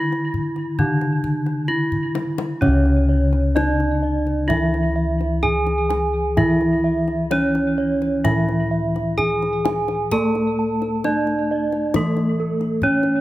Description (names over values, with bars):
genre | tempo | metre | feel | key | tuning
Javanese gamelan | 64-70 BPM | 4/4 | straight | C# pelog | A4 = 442 Hz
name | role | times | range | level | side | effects
gamelan-type bronze metallophone | melody | 0.0-13.2 s | A3 to A4 | -22 LUFS | equal | tape echo
gamelan-type bronze metallophone | accompaniment | 0.0-13.2 s | C#3 to A3 | -24 LUFS | left 1 dB | none
kendang | percussion | 0.1-13.1 s | none | -27 LUFS | left 3 dB | none
gamelan-type bossed gongs | bass | 0.8-13.2 s | C#2 to A4 | -24 LUFS | equal | none
gamelan-type bronze metallophone | arpeggios | 2.6-13.2 s | A4 to A5 | -26 LUFS | right 5 dB | none
room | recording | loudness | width
light reverb | close, detailed microphones | -18 LUFS | side -16 dB against mid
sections
0.0-2.6 A section; 2.6-13.2 B section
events
drum fill 1.9-2.6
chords
none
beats
0.79 1.69 | 2.62 3.56 4.49 5.43 | 6.37 7.31 8.24 9.18 | 10.12 11.05 11.95 12.83